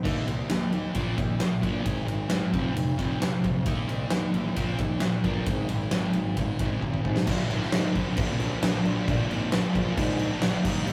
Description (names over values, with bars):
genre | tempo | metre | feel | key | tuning
quiet-loud alternative rock | 133 BPM | 4/4 | straight | Bb mixolydian | A4 = 440 Hz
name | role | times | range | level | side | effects
thick fuzz guitar | riff | 0.0-10.9 s | F2 to Eb4 | -32 LUFS | equal | distortion
fuzz picked electric bass | bass | 0.1-10.9 s | F1 to Ab2 | -34 LUFS | equal | overdrive
huge arena drum kit | drums | 0.1-10.9 s | crash cymbal, kick drum, ride cymbal, snare drum | -29 LUFS | equal | none
room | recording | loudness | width
light reverb | rough rehearsal-room recording, tube saturation | -27 LUFS | mono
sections
0.1-7.3 A section; 7.3-10.9 B section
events
drum fill 6.8-7.3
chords
0.1 Eb5; 1.0 Bbsus4; 1.9 Ab5; 2.5 F5; 3.7 Eb5; 4.6 Bbsus4; 5.5 Ab5; 7.3 Bb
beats
| 0.05 0.51 0.96 1.41 | 1.86 2.32 2.77 3.22 | 3.67 4.12 4.58 5.03 | 5.48 5.93 6.38 6.83 | 7.28 7.73 8.18 8.63 | 9.08 9.53 9.98 10.43 | 10.88